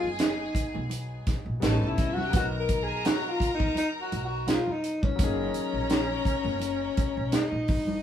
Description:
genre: lush 1970s-style soul.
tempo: 84 BPM.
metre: 4/4.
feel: swing 54% on 16ths.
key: F# major.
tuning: A4 = 441 Hz.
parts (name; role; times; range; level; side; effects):
breathy tenor saxophone; melody; 0.0-8.0 s; C#4 to A#4; -30 LUFS; left 2 dB; none.
rich studio violin section; second line; 0.0-7.6 s; A3 to A#5; -36 LUFS; left 2 dB; none.
clear concert grand piano; accompaniment; 0.0-8.0 s; F#3 to A#4; -37 LUFS; left 2 dB; none.
upright bass; bass; 0.0-8.0 s; F#1 to C#2; -33 LUFS; equal; none.
tight funk drum kit; drums; 0.2-7.9 s; hi-hat, kick drum, snare drum; -28 LUFS; right 1 dB; none.
congas; percussion; 0.2-8.0 s; none; -37 LUFS; right 1 dB; none.
room: moderate studio reverb, RT60 0.5 s.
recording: band playing live in one room, small room ambience.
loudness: -25 LUFS.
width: side -10 dB against mid.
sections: 0.0-8.0 A section.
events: none.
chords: 0.0 G#m7; 1.6 A9; 2.3 Bmaj7; 5.2 F#69.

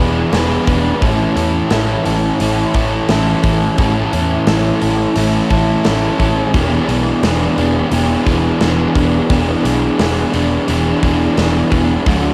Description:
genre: rock, shoegaze and dream pop.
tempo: 87 BPM.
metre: 4/4.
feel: straight.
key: E mixolydian.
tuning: A4 = 438 Hz.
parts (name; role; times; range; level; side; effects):
crunchy overdriven guitar; riff; 0.0-12.3 s; A2 to G#4; -23 LUFS; equal; subtle chorus, cassette tape.
overdriven semi-hollow guitar; riff; 0.0-12.3 s; A2 to B4; -18 LUFS; equal; reverse reverb, cassette tape.
vintage muted fingered electric bass; bass; 0.0-12.3 s; E1 to E2; -22 LUFS; equal; none.
big rock drum kit; drums; 0.3-12.2 s; hi-hat, kick drum, snare drum; -22 LUFS; equal; none.
room: studio ambience.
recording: home recording on cassette.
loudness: -15 LUFS.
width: mono.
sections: 0.0-12.3 A section.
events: none.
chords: 0.0 E5; 1.0 A; 6.5 E5.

